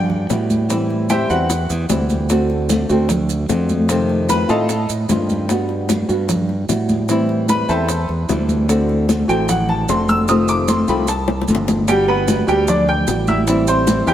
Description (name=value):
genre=latin, Cuban son and guajira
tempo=150 BPM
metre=4/4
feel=straight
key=G major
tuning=A4 = 440 Hz
part: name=bright baby grand piano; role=arpeggios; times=0.0-1.7, 4.3-4.9, 7.5-14.1 s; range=G3 to G6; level=-20 LUFS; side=equal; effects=none
part: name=modern bright fingered electric bass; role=bass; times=0.0-14.1 s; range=F1 to A2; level=-21 LUFS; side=right 1 dB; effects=none
part: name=bongos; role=percussion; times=0.1-14.1 s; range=none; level=-27 LUFS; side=left 4 dB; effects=none
part: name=congas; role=percussion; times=0.1-14.1 s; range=none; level=-22 LUFS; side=equal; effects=none
part: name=flamenco guitar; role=accompaniment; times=0.3-14.1 s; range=C3 to F#4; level=-20 LUFS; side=left 1 dB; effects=none
part: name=maracas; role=percussion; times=0.3-14.1 s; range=none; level=-30 LUFS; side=right 7 dB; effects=none
room=moderate plate reverb, RT60 3.1 s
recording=heard from further back in the room, faint mains hum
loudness=-15 LUFS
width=side -11 dB against mid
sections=0.0-11.9 A section; 11.9-14.1 B section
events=grand piano solo 0.0-11.9; drum fill 11.3-11.9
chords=0.0 Gmaj7; 0.7 Am7; 2.3 D7; 3.9 F7; 5.5 Gmaj7; 7.1 Am7; 8.7 D7; 10.3 F7; 11.9 Gmaj7; 13.5 Am7